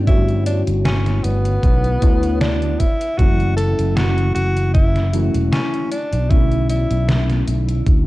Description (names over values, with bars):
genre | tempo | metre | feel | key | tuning
vaporwave | 77 BPM | 4/4 | swing 54% on 16ths | G lydian | A4 = 441 Hz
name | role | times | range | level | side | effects
mellow FM electric piano | accompaniment | 0.0-8.1 s | D3 to C#5 | -23 LUFS | left 1 dB | analog chorus
sustaining fretless electric bass | bass | 0.0-8.1 s | E1 to G2 | -18 LUFS | equal | ensemble chorus
breathy tenor saxophone | melody | 0.1-7.4 s | B3 to A4 | -24 LUFS | equal | tape echo
detuned 8-bit digital drum machine | drums | 0.1-8.0 s | hi-hat, snare drum | -23 LUFS | equal | none
electronic kick drum | drums | 0.1-8.0 s | none | -15 LUFS | equal | none
room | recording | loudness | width
little or no reverb | dark, warm production | -15 LUFS | side -18 dB against mid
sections
0.0-8.1 A section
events
none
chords
0.0 Gmaj9#11; 2.8 F#m7; 5.9 Bm11